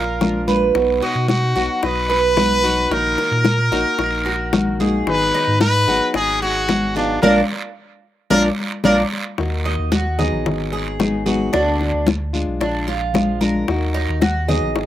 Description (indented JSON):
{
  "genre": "latin, Cuban son and guajira",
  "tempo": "111 BPM",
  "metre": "4/4",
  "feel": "straight",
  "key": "Eb minor",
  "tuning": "A4 = 441 Hz",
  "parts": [
    { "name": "brilliant trumpet", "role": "melody", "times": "0.0-9.0 s", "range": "D4 to B4", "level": "-19 LUFS", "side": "left 1 dB", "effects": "slapback echo" },
    { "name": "nylon-string guitar", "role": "accompaniment", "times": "0.0-14.9 s", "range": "B2 to Ab4", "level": "-25 LUFS", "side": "left 3 dB", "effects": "slapback echo" },
    { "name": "Cuban tres", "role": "arpeggios", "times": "0.0-14.9 s", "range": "D4 to D#5", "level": "-22 LUFS", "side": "right 4 dB", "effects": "none" },
    { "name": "sub bass with octave", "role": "bass", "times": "0.0-14.9 s", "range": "Ab1 to B2", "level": "-24 LUFS", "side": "equal", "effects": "none" },
    { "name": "bongos", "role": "percussion", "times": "0.2-14.9 s", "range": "none", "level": "-21 LUFS", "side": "left 6 dB", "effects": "none" },
    { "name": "congas", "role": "percussion", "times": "0.2-14.9 s", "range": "none", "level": "-22 LUFS", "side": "left 2 dB", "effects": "slapback echo" },
    { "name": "guiro", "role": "percussion", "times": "0.2-14.9 s", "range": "none", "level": "-32 LUFS", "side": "right 5 dB", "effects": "none" }
  ],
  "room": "little or no reverb",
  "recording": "recorded outdoors, with no room sound",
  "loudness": "-16 LUFS",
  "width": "side -12 dB against mid",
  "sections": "0.0-9.4 A section; 9.4-14.9 B section",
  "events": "band accent 7.2-9.4; drum fill 8.3-9.4",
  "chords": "0.0 Bb; 0.8 B; 2.9 Ebm/Bb; 5.1 Abm7; 7.2 Bb; 9.4 Ebm; 10.5 Abm7; 11.5 D; 12.6 Bb7; 13.7 Ebm"
}